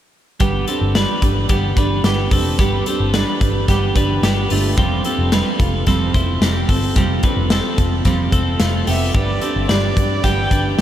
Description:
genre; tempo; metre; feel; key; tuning
jangly indie pop; 110 BPM; 4/4; straight; G mixolydian; A4 = 438 Hz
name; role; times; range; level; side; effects
fingerpicked steel-string acoustic guitar; accompaniment; 0.4-10.8 s; F3 to B4; -22 LUFS; right 6 dB; none
twelve-string electric guitar; arpeggios; 0.4-10.8 s; A3 to C5; -22 LUFS; left 3 dB; spring reverb, tape echo
vintage muted picked electric bass; bass; 0.4-10.7 s; F1 to G2; -20 LUFS; equal; none
big rock drum kit; drums; 0.4-10.8 s; hi-hat, kick drum, snare drum; -19 LUFS; equal; none
dark violin; melody; 8.9-10.8 s; D5 to G5; -23 LUFS; equal; tape echo
room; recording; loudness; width
moderate huge ambient reverb, RT60 8.1 s; dreamy mix soaked in reverb; -15 LUFS; side -11 dB against mid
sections
0.4-9.1 A section; 9.1-10.8 B section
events
none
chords
0.4 G; 4.8 Fadd9; 9.1 G

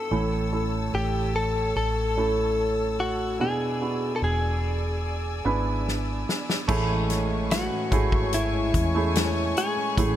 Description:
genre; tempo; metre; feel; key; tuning
pop ballad; 73 BPM; 4/4; straight; A major from 6.7 s; A4 = 442 Hz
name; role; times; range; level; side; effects
direct-recorded clean electric guitar; melody; 0.0-10.2 s; E4 to A4; -28 LUFS; left 1 dB; digital delay
warm grand piano; accompaniment; 0.0-10.2 s; A2 to B4; -28 LUFS; right 4 dB; none
rich studio string section; sustained chords; 0.0-10.2 s; C#5 to E6; -34 LUFS; left 3 dB; none
vintage muted fingered electric bass; bass; 0.1-10.2 s; E1 to E2; -28 LUFS; equal; none
natural country drum kit; drums; 5.9-10.2 s; crash cymbal, hi-hat, kick drum, snare drum; -27 LUFS; left 1 dB; none
fingerpicked plugged-in steel-string acoustic guitar; arpeggios; 6.7-10.2 s; A2 to E4; -35 LUFS; left 7 dB; none
room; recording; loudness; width
light reverb, small room ambience; none; -23 LUFS; side -11 dB against mid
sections
0.0-6.7 A section; 6.7-10.2 B section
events
drum fill 5.9-6.7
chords
0.1 A; 3.4 E7; 6.7 Amaj7

